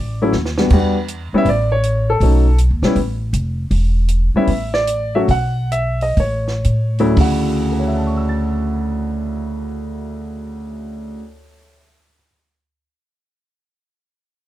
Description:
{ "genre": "jazz piano trio", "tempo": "111-160 BPM", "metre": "4/4", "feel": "swing 66% on 8ths", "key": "D major", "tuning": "A4 = 441 Hz", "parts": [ { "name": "warm grand piano", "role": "melody", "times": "0.0-12.3 s", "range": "D2 to A6", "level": "-18 LUFS", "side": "equal", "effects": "none" }, { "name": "upright bass", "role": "bass", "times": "0.0-11.1 s", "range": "E1 to A2", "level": "-18 LUFS", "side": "equal", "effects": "none" }, { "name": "compact cocktail drum kit", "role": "drums", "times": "0.3-7.3 s", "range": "crash cymbal, hi-hat, kick drum, snare drum", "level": "-22 LUFS", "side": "right 1 dB", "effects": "none" } ], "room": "little or no reverb", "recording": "dark, warm production", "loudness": "-15 LUFS", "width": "side -14 dB against mid", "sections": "0.7-7.2 A section; 7.2-11.5 B section", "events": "drum fill 0.3-0.7; slowing down 3.7-7.2", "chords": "0.0 Dadd9; 0.7 Em7; 1.5 A; 2.2 B7; 3.0 F; 3.7 N.C.; 4.5 A5; 5.3 B5; 6.2 A; 7.2 Dmaj9", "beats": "0.34 | 0.71 1.09 1.46 1.84 | 2.22 2.59 2.97 3.35 | 3.72 4.10 4.49 4.88 | 5.29 5.72 6.17 6.66 | 7.17 7.71 8.25 8.79 | 9.33 9.87 10.41 10.95" }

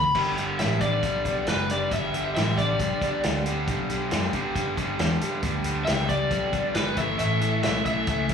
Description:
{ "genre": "blues rock power trio and southern rock", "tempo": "136 BPM", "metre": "4/4", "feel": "straight", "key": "unclear", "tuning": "A4 = 440 Hz", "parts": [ { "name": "overdriven slide guitar", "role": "melody", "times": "0.0-8.3 s", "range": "B4 to B5", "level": "-27 LUFS", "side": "left 2 dB", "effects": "slapback echo, analog delay" }, { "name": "vintage muted fingered electric bass", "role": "bass", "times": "0.0-8.3 s", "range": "F#1 to G2", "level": "-30 LUFS", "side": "equal", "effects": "none" }, { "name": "vintage drum kit", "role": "drums", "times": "0.0-8.3 s", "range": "crash cymbal, hi-hat, kick drum, snare drum", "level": "-30 LUFS", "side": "equal", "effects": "none" }, { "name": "overdriven electric guitar", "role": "riff", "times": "0.2-8.3 s", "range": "G2 to A3", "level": "-27 LUFS", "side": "equal", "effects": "slapback echo" } ], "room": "moderate club reverb, RT60 0.7 s", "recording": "live gig heard through the venue's PA, club reverb, studio ambience", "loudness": "-23 LUFS", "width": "side -7 dB against mid", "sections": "0.2-8.3 A section", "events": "drum fill 0.0", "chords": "0.2 G; 7.0 A", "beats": "| 0.16 0.60 1.04 1.48 | 1.91 2.35 2.79 3.23 | 3.67 4.11 4.55 4.99 | 5.43 5.87 6.31 6.75 | 7.20 7.64 8.08" }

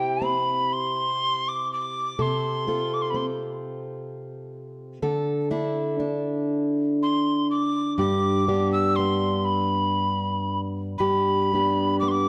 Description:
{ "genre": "celtic folk, Celtic slow air", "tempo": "41 BPM (dotted quarters)", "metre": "6/8", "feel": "uneven beats, rubato", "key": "unclear", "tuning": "A4 = 437 Hz", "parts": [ { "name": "mid whistle", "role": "melody", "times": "0.0-12.3 s", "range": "G5 to E6", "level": "-28 LUFS", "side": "equal", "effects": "none" }, { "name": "fingerpicked plugged-in steel-string acoustic guitar", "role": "accompaniment", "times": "0.0-12.3 s", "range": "G2 to A4", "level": "-27 LUFS", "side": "equal", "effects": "none" } ], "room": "moderate scoring stage reverb, RT60 1.5 s", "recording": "none", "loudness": "-25 LUFS", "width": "mono", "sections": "0.0-12.3 A section", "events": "none", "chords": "0.0 C; 2.2 F/C; 5.0 Dsus2; 8.0 G", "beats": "0.71 | 2.18 3.61 | 5.04 6.51 | 8.00 9.49 | 11.01" }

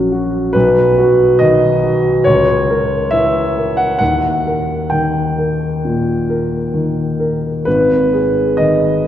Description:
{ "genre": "classical, romantic character piece for solo piano", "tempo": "64-71 BPM", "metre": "4/4", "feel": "rubato", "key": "unclear", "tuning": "A4 = 439 Hz", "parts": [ { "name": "warm concert grand piano", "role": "solo", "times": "0.0-9.1 s", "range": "G#1 to G5", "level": "-12 LUFS", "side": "equal", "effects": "none" } ], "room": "wet church reverb, RT60 2.7 s", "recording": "worn, warbling old tape, cassette tape, warbly pitch drift", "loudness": "-12 LUFS", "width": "side -11 dB against mid", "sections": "0.0-9.1 A section", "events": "none", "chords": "0.0 F#/A#; 0.5 B; 2.3 A#dim/C#; 4.0 D#; 7.7 G#m", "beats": "| 0.55 1.40 2.26 3.13 | 4.00 4.92 5.84 6.74 | 7.66 8.59" }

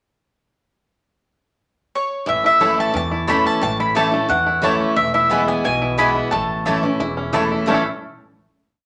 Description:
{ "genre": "bluegrass", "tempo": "177 BPM", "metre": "4/4", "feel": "straight", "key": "A major", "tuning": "A4 = 441 Hz", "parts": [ { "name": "mandolin", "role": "melody", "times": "2.0-7.3 s", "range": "C#5 to B5", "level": "-21 LUFS", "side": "equal", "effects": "none" }, { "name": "picked steel-string acoustic guitar", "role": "accompaniment", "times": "2.3-7.8 s", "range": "E2 to E4", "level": "-24 LUFS", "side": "equal", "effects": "none" }, { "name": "bluegrass banjo", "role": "arpeggios", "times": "2.3-7.9 s", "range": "E3 to A4", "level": "-27 LUFS", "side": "equal", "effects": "none" }, { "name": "upright bass", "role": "bass", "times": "2.3-7.8 s", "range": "E1 to E2", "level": "-33 LUFS", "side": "equal", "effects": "none" }, { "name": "mandolin", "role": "stabs", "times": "2.6-7.8 s", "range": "A3 to A5", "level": "-27 LUFS", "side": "equal", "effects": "none" } ], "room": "wet club reverb, RT60 0.8 s", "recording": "none", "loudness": "-18 LUFS", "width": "mono", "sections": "0.9-2.3 pickup bar; 2.3-7.7 A section; 7.7-8.9 final chord", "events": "none", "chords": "0.9 N.C.; 2.3 A; 5.0 E; 6.3 A", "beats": "| 0.92 1.26 1.59 1.93 | 2.27 2.61 2.94 3.28 | 3.62 3.96 4.30 4.63 | 4.97 5.31 5.65 5.99 | 6.33 6.67 7.00 7.34 | 7.68" }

